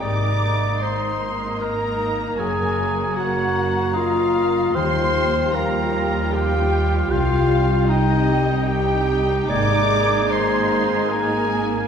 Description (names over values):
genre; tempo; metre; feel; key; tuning
cinematic; 76 BPM; 3/4; rubato; Ab lydian; A4 = 442 Hz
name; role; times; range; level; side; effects
muted studio violin section; melody; 0.0-11.9 s; Eb5 to D6; -30 LUFS; left 2 dB; none
mellow clarinet; second line; 0.0-11.9 s; Eb4 to D5; -23 LUFS; left 1 dB; none
mellow hollow silver concert flute; second line; 0.0-11.9 s; G5 to Bb5; -30 LUFS; left 2 dB; none
muted studio violin section; second line; 0.0-11.9 s; Eb5 to D6; -30 LUFS; left 1 dB; none
warm oboe; second line; 0.0-11.9 s; Db5 to Ab5; -29 LUFS; right 1 dB; none
muted studio viola section; accompaniment; 0.0-11.9 s; Gb3 to F4; -27 LUFS; right 3 dB; none
dark French horn section; sustained chords; 0.0-11.9 s; Db3 to Bb4; -30 LUFS; left 3 dB; none
concert harp; arpeggios; 0.0-11.9 s; Gb2 to F5; -26 LUFS; left 3 dB; none
muted studio cello section; bass; 0.0-11.9 s; C2 to Ab2; -30 LUFS; right 3 dB; none
muted symphonic double bass section; bass; 0.0-11.9 s; Gb1 to Eb2; -27 LUFS; right 2 dB; none
room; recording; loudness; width
wet scoring stage reverb, RT60 1.5 s; minimal, uncompressed stereo recording; -18 LUFS; side -7 dB against mid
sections
0.0-11.9 A section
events
none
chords
0.0 Abadd9; 2.4 Gb; 4.8 Ebadd9; 7.1 Cm; 9.5 Abadd9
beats
| 0.02 0.81 1.61 | 2.39 3.17 3.95 | 4.75 5.55 6.33 | 7.10 7.89 8.68 | 9.51 10.31 11.10